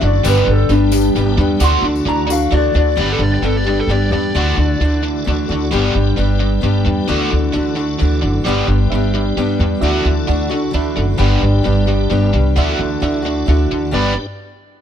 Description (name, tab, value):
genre	folk rock and heartland rock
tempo	131 BPM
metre	3/4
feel	straight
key	G major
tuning	A4 = 443 Hz
part	electric guitar through a small old amp	melody	0.0-3.0 s	D4 to C6	-18 LUFS	left 2 dB	none
part	picked acoustic archtop guitar	accompaniment	0.0-14.1 s	G2 to G4	-21 LUFS	left 7 dB	none
part	reed electric piano	accompaniment	0.0-2.8, 8.5-14.2 s	D4 to B5	-26 LUFS	right 13 dB	fast tremolo
part	tonewheel organ	sustained chords	0.0-14.3 s	D4 to D5	-28 LUFS	left 1 dB	slow rotary speaker, chorus vibrato
part	biting overdriven guitar	riff	0.0-14.1 s	D3 to B4	-20 LUFS	right 3 dB	none
part	upright bass	bass	0.0-14.1 s	F#1 to E2	-16 LUFS	equal	none
part	tambourine	percussion	0.2-2.5 s	none	-29 LUFS	left 19 dB	none
part	overdriven slide guitar	second line	3.0-5.0, 13.9-14.2 s	A4 to D5	-24 LUFS	right 2 dB	none
room	small room ambience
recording	dry, close 1970s-style studio recording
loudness	-13 LUFS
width	side -9 dB against mid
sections	0.0-3.0 A section; 3.0-13.9 B section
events	clean electric guitar solo 0.0-3.0; reed electric piano fill 10.5-11.2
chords	0.2 G; 1.6 Dadd9; 3.0 G; 4.3 Dadd9; 5.7 G; 7.1 Dadd9; 8.5 G; 9.8 Dadd9; 11.2 G; 12.6 Dadd9; 13.9 G